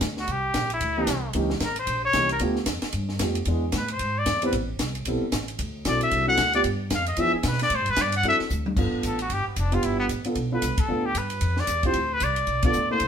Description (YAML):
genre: jazz, small-group swing and bop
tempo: 226 BPM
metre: 4/4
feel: swing 59% on 8ths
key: G mixolydian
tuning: A4 = 439 Hz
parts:
  - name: upright bass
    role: bass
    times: 0.0-13.1 s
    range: F1 to B2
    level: -29 LUFS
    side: equal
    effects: none
  - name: compact cocktail drum kit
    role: drums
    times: 0.0-13.1 s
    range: crash cymbal, hi-hat, kick drum, ride cymbal, snare drum, toms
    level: -29 LUFS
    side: equal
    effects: none
  - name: trumpet with straight mute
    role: melody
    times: 0.2-13.1 s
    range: B3 to F#5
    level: -24 LUFS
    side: left 1 dB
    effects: none
  - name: warm concert grand piano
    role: accompaniment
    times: 1.0-13.0 s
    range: E3 to C5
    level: -27 LUFS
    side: right 1 dB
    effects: none
room: moderate studio reverb, RT60 0.7 s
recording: band playing live in one room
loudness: -22 LUFS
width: side -8 dB against mid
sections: 0.0-8.8 A section; 8.8-13.1 B section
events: muted trumpet solo 0.0-8.8; drum fill 8.5; band accent 10.8, 12.6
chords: 0.3 C7; 1.3 C#dim7; 2.4 G7; 3.5 E7; 4.5 Am7; 5.6 D7; 6.6 Ebadd9 (rootless); 7.2 E7b9; 7.7 A5; 8.2 D9; 8.8 G7; 11.9 Csus2; 12.5 Bm7b5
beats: 0.01 | 0.28 0.54 0.81 1.07 | 1.34 1.61 1.87 2.14 | 2.40 2.67 2.94 3.20 | 3.47 3.73 4.00 4.26 | 4.53 4.79 5.06 5.32 | 5.59 5.85 6.12 6.38 | 6.65 6.91 7.18 7.44 | 7.71 7.97 8.24 8.50 | 8.77 9.03 9.30 9.56 | 9.83 10.09 10.36 10.62 | 10.89 11.15 11.42 11.68 | 11.95 12.21 12.48 12.74 | 13.01